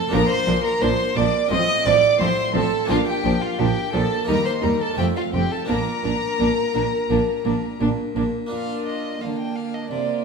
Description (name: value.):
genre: classical, baroque-style concerto movement with solo episodes.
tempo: 86 BPM.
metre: 4/4.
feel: straight.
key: Bb major.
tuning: A4 = 441 Hz.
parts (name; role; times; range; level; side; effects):
rich chamber violin section; melody; 0.0-10.2 s; F4 to Eb6; -29 LUFS; left 4 dB; none.
warm violin; melody; 0.0-10.2 s; F4 to G5; -23 LUFS; right 1 dB; none.
harpsichord; accompaniment; 0.0-10.2 s; Eb2 to G4; -28 LUFS; right 1 dB; none.
rich chamber violin section; second line; 0.1-10.2 s; C4 to F4; -30 LUFS; left 1 dB; none.
rich studio viola section; accompaniment; 0.1-10.2 s; F3 to D4; -28 LUFS; right 1 dB; none.
rich chamber double bass section; bass; 0.1-8.2 s; F1 to Eb2; -28 LUFS; right 4 dB; none.
warm chamber cello section; bass; 0.1-10.2 s; Eb2 to D3; -27 LUFS; right 2 dB; none.
room: moderate scoring stage reverb, RT60 1.5 s.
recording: none.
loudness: -19 LUFS.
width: side -5 dB against mid.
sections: 0.0-8.5 A section; 8.5-10.2 B section.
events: none.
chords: 0.1 Bb; 1.5 F/A; 2.9 Bb; 4.3 Eb; 5.0 F; 5.7 Bb.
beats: | 0.12 0.81 1.50 2.20 | 2.89 3.58 4.28 4.98 | 5.69 6.39 7.10 7.81 | 8.51 9.21 9.91.